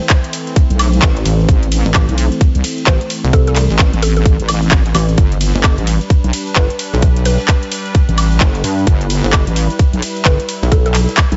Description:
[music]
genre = bass house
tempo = 130 BPM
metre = 4/4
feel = swing 61% on 16ths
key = unclear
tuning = A4 = 436 Hz
[part]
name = mallet-like synth pluck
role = melody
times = 0.0-10.9 s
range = A4 to C5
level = -25 LUFS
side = equal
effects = chorus, digital delay
[part]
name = sweeping resonant pad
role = sustained chords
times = 0.0-11.4 s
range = E3 to B4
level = -27 LUFS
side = equal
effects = chorus, sidechain pumping
[part]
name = garage drum kit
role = drums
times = 0.0-11.4 s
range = cabasa, handclaps, hi-hat, ride cymbal, woodblock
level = -21 LUFS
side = equal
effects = none
[part]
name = electronic kick drum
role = drums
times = 0.1-11.3 s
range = none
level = -14 LUFS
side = equal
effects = none
[part]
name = wobble bass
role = bass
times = 0.7-11.4 s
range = G1 to C2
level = -17 LUFS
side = equal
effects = chorus, tube saturation, sidechain pumping
[part]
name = pulsing pluck wobble bass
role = bass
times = 1.0-11.1 s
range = G1 to G2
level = -17 LUFS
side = equal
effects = chorus, tube saturation, sidechain pumping
[sound]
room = little or no reverb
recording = nothing above 7.8 kHz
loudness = -14 LUFS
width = mono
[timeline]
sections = 0.0-11.4 A section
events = none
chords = 0.0 Am; 5.2 G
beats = 0.10 0.56 1.02 | 1.49 1.95 2.41 2.87 | 3.33 3.79 4.25 4.72 | 5.18 5.64 6.10 6.56 | 7.03 7.49 7.95 8.41 | 8.87 9.33 9.79 10.26 | 10.72 11.18

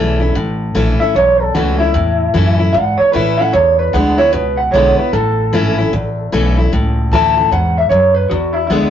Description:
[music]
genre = rock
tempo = 151 BPM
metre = 4/4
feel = swing 63% on 8ths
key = A major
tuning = A4 = 442 Hz
[part]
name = picked steel-string acoustic guitar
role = accompaniment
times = 0.0-8.9 s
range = E2 to E4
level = -17 LUFS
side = left 2 dB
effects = none
[part]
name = upright bass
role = bass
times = 0.0-8.9 s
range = G#1 to A2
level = -17 LUFS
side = equal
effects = none
[part]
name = electric guitar through a small old amp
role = melody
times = 1.0-8.9 s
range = E4 to A5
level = -14 LUFS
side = right 1 dB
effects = none
[sound]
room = moderate studio reverb, RT60 0.6 s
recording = rough rehearsal-room recording, warm saturation, nothing above 7.6 kHz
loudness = -11 LUFS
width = side -9 dB against mid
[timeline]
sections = 0.0-6.7 A section; 6.7-8.9 A section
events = clean electric guitar solo 0.0-8.9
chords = 0.0 A; 3.5 E7; 5.1 A; 8.3 E7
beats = | 0.36 0.76 1.15 1.55 | 1.95 2.35 2.75 3.15 | 3.54 3.94 4.34 4.74 | 5.13 5.53 5.93 6.33 | 6.72 7.12 7.52 7.92 | 8.31 8.71

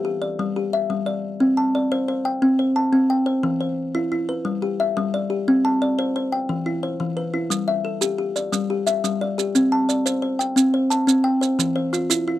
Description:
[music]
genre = southern african traditional, mbira-style interlocking cycle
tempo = 118 BPM (dotted quarters)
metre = 12/8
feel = straight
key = G mixolydian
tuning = A4 = 443 Hz
[part]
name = kalimba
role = arpeggios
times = 0.0-12.4 s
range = E3 to A5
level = -19 LUFS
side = left 1 dB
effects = none
[part]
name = maracas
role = percussion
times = 7.5-12.3 s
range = none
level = -24 LUFS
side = right 10 dB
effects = none
[sound]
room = little or no reverb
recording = dry, close 1970s-style studio recording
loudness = -19 LUFS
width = side -14 dB against mid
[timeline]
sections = 0.0-12.4 A section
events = none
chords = 0.0 G5; 1.4 C5; 3.4 Em; 4.5 G; 5.5 C5; 6.5 Em; 7.5 G5; 9.6 C5; 11.6 Em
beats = 0.40 0.91 | 1.41 1.92 2.43 2.94 | 3.44 3.95 4.46 4.97 | 5.47 5.98 6.49 7.00 | 7.51 8.02 8.53 9.04 | 9.55 10.06 10.57 11.08 | 11.59 12.11

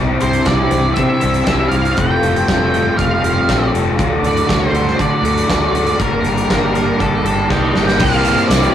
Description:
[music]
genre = rock, shoegaze and dream pop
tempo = 119 BPM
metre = 4/4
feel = straight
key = C mixolydian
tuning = A4 = 440 Hz
[part]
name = chorused pulse-width pad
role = sustained chords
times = 0.0-8.7 s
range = A4 to D6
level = -24 LUFS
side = right 2 dB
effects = none
[part]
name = direct-recorded clean electric guitar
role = riff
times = 0.0-8.0 s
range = C3 to A4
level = -26 LUFS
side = right 4 dB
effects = none
[part]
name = raw garage guitar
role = riff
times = 0.0-8.7 s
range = F2 to E4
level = -17 LUFS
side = left 3 dB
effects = overdrive
[part]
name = vintage muted fingered electric bass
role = bass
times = 0.0-8.7 s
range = F1 to D3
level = -21 LUFS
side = equal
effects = none
[part]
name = octave-fuzz lead guitar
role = melody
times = 0.2-8.7 s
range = A4 to G5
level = -19 LUFS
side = right 2 dB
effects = distortion
[part]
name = big rock drum kit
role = drums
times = 0.2-8.7 s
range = crash cymbal, hi-hat, kick drum, snare drum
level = -19 LUFS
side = right 1 dB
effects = none
[part]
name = tambourine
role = percussion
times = 8.0-8.6 s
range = none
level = -37 LUFS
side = right 6 dB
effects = none
[sound]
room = wet stone room reverb, RT60 1.2 s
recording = rough rehearsal-room recording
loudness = -13 LUFS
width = side -10 dB against mid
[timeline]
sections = 0.0-8.0 A section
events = drum fill 7.5-8.0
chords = 0.0 Cadd9; 2.0 Fadd9; 4.0 D; 6.0 Gmadd9; 8.0 C7sus4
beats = 0.46 0.96 1.46 | 1.97 2.47 2.97 3.48 | 3.98 4.48 4.99 5.49 | 5.99 6.50 7.00 7.50 | 8.00 8.51

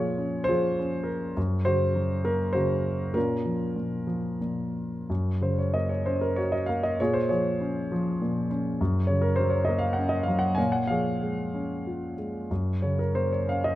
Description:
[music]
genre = classical, lyrical solo piano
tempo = 88-104 BPM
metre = 3/4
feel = rubato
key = unclear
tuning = A4 = 444 Hz
[part]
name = dark concert grand piano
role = solo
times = 0.0-13.8 s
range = Gb2 to Ab5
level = -24 LUFS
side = equal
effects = none
[sound]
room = moderate scoring stage reverb, RT60 2.1 s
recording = none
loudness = -24 LUFS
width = side -15 dB against mid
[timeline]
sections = 0.0-5.1 A section; 5.1-13.8 B section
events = none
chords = 0.0 Bbm7; 1.4 Gb; 3.2 Bbm; 5.1 Gb; 7.0 Bbm7; 8.8 Gb; 10.6 Bbm7; 12.5 Gb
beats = 0.19 0.79 | 1.37 1.96 2.55 | 3.16 3.77 4.42 | 5.10 5.74 6.37 | 6.99 7.60 8.21 | 8.80 9.38 9.98 | 10.60 11.23 11.86 | 12.50 13.15

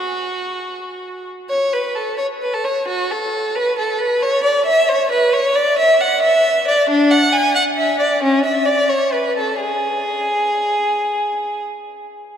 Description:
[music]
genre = classical, baroque-style suite movement for unaccompanied violin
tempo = 88 BPM (dotted quarters)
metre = 12/8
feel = rubato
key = unclear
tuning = A4 = 437 Hz
[part]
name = rich violin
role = solo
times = 0.0-11.7 s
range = C#4 to G#5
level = -15 LUFS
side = equal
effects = none
[sound]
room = wet cathedral reverb, RT60 4.8 s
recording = in a vast, echoing space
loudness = -15 LUFS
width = side -8 dB against mid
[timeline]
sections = 0.0-1.5 A section; 1.5-12.4 A section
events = none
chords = none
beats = 0.09 0.79 | 1.50 2.19 2.87 3.54 | 4.21 4.88 5.55 6.22 | 6.89 7.56 8.23 8.91 | 9.61 10.31 11.00

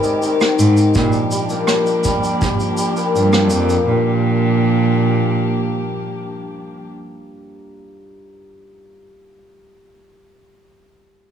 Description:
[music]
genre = folktronica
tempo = 82 BPM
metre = 4/4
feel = straight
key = Bb mixolydian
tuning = A4 = 440 Hz
[part]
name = dark string quartet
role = sustained chords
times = 0.0-6.9 s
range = Eb3 to G4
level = -24 LUFS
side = equal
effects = none
[part]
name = hammered dulcimer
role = arpeggios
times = 0.0-9.1 s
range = G2 to Bb3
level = -20 LUFS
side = left 3 dB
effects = low-pass filter, digital delay
[part]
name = shaker and rim click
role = drums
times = 0.0-3.8 s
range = none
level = -23 LUFS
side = right 1 dB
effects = none
[part]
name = rich cello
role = bass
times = 0.6-6.0 s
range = F2 to Bb2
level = -17 LUFS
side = right 2 dB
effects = tube saturation
[part]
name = kick drum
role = drums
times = 1.0-2.6 s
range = none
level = -22 LUFS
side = right 2 dB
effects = none
[sound]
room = light reverb, studio reverb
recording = small room reverb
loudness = -14 LUFS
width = side -8 dB against mid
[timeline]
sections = 0.0-3.9 A section; 3.9-6.8 B section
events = none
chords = 0.0 Abmaj7; 1.0 Bb6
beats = 0.22 | 0.95 1.68 2.42 3.15 | 3.88 4.61 5.34 6.07

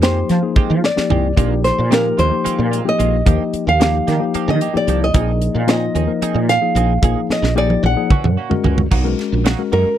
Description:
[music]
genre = electric jazz fusion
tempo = 223 BPM (eighths)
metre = 7/8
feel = straight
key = Bb mixolydian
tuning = A4 = 442 Hz
[part]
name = nylon-string guitar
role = melody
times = 0.0-10.0 s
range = Bb4 to Gb5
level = -20 LUFS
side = right 2 dB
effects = none
[part]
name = tine electric piano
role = accompaniment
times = 0.0-9.9 s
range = F3 to Bb4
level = -21 LUFS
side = left 9 dB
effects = none
[part]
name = direct-recorded clean electric guitar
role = stabs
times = 0.0-9.9 s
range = Eb3 to Ab4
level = -26 LUFS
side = right 12 dB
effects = analog chorus
[part]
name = woody fretless electric bass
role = bass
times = 0.0-9.9 s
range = Bb1 to F3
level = -18 LUFS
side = right 1 dB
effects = ensemble chorus
[part]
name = tight funk drum kit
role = drums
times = 0.0-9.8 s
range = crash cymbal, hi-hat, kick drum, ride cymbal, snare drum, toms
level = -17 LUFS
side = right 1 dB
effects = none
[sound]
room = little or no reverb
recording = dry, close 1970s-style studio recording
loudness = -14 LUFS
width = side -11 dB against mid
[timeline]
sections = 0.0-8.9 A section; 8.9-10.0 A section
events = nylon-string guitar solo 0.0-10.0; drum fill 0.6-1.4, 7.3-8.9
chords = 0.0 Fm9; 1.4 Bb9sus4; 3.3 Ebmaj9; 5.1 Bb9sus4; 7.0 Bb7sus4; 8.1 Gb7; 8.9 Bmaj7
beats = 0.03 0.29 0.56 0.83 1.10 | 1.38 1.65 1.91 2.18 2.45 2.72 2.99 | 3.26 3.53 3.80 4.07 4.34 4.61 4.88 | 5.15 5.42 5.68 5.95 6.22 6.49 6.76 | 7.03 7.30 7.57 7.84 8.11 8.37 8.64 | 8.91 9.18 9.45 9.72

